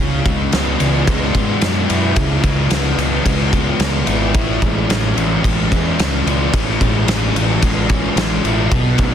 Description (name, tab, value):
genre	rock, shoegaze and dream pop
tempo	110 BPM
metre	4/4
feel	straight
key	C# minor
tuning	A4 = 440 Hz
part	fuzz guitar	riff	0.0-9.1 s	A2 to E4	-18 LUFS	equal	distortion, wide subtle chorus
part	fuzz picked electric bass	bass	0.0-9.1 s	G#1 to G#2	-20 LUFS	equal	overdrive
part	loose indie drum kit	drums	0.3-9.1 s	kick drum, ride cymbal, snare drum	-18 LUFS	equal	none
room	light reverb, small room reverb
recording	dense, heavily limited modern master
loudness	-14 LUFS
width	side -9 dB against mid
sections	0.0-9.1 A section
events	none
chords	0.0 C#m7; 4.4 Amaj7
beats	0.54 1.08 1.63 | 2.17 2.72 3.26 3.81 | 4.35 4.90 5.44 5.99 | 6.53 7.08 7.63 8.17 | 8.72